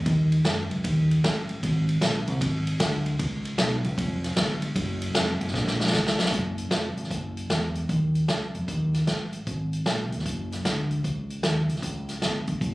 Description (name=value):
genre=uptempo gospel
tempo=153 BPM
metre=4/4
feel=swing 66% on 8ths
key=unclear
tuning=A4 = 442 Hz
part: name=fingered electric bass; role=bass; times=0.1-12.7 s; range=E#1 to F#2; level=-26 LUFS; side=equal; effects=none
part: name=swinging big-band drum kit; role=drums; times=0.1-12.7 s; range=hi-hat, kick drum, ride cymbal, snare drum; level=-27 LUFS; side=equal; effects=none
room=light reverb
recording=recorded on a phone in the room, club reverb, compression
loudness=-24 LUFS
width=side -20 dB against mid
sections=0.0-6.3 A section; 6.3-12.7 B section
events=drum fill 5.5-6.3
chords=none